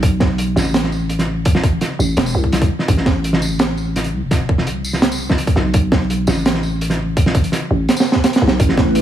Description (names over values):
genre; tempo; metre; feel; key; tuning
half-time drum and bass; 168 BPM; 4/4; half-time; A minor; A4 = 441 Hz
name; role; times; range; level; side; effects
growling 808-style bass; bass; 0.0-9.0 s; E1 to C2; -19 LUFS; equal; none
crunchy breakbeat drum kit; drums; 0.0-9.0 s; hi-hat, snare drum, tambourine; -17 LUFS; right 1 dB; none
electronic kick drum; drums; 0.0-8.8 s; none; -16 LUFS; equal; none
dark analog pad; sustained chords; 8.6-9.0 s; A3 to B4; -17 LUFS; right 1 dB; chorus, sidechain pumping
room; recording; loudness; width
little or no reverb; none; -14 LUFS; side -11 dB against mid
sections
0.0-9.0 A section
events
drum fill 7.9-8.6; kick drops out 8.2-8.6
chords
0.0 Amadd9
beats
| 0.03 0.38 0.74 1.10 | 1.46 1.81 2.17 2.53 | 2.88 3.24 3.60 3.96 | 4.31 4.67 5.03 5.38 | 5.74 6.10 6.46 6.81 | 7.17 7.53 7.88 8.24 | 8.60 8.96